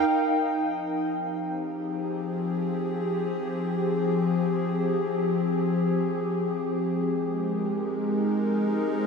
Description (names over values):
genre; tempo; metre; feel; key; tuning
ambient; free time; none; none; F minor; A4 = 440 Hz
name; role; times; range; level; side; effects
evolving wavetable pad; sustained chords; 0.0-9.1 s; F3 to G5; -24 LUFS; left 1 dB; chorus, built-in reverb, shimmer reverb
room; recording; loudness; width
wet cathedral reverb, RT60 6.6 s; in a vast, echoing space; -24 LUFS; side -5 dB against mid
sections
0.1-9.1 A section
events
fade-in on ambient pad 0.1-9.1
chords
0.1 Fm7; 6.8 Abmaj7